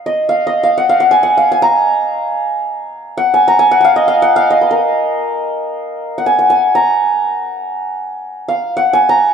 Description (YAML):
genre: indian classical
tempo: free time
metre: none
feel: none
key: Bb raga bhairavi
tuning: A4 = 439 Hz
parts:
  - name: santur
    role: solo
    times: 0.0-9.3 s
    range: Bb4 to Bb5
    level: -11 LUFS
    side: equal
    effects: none
room: moderate scoring stage reverb, RT60 1.5 s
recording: dark, warm production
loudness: -11 LUFS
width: side -7 dB against mid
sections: 0.0-5.8 A section; 5.8-9.3 A section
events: none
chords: none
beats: free time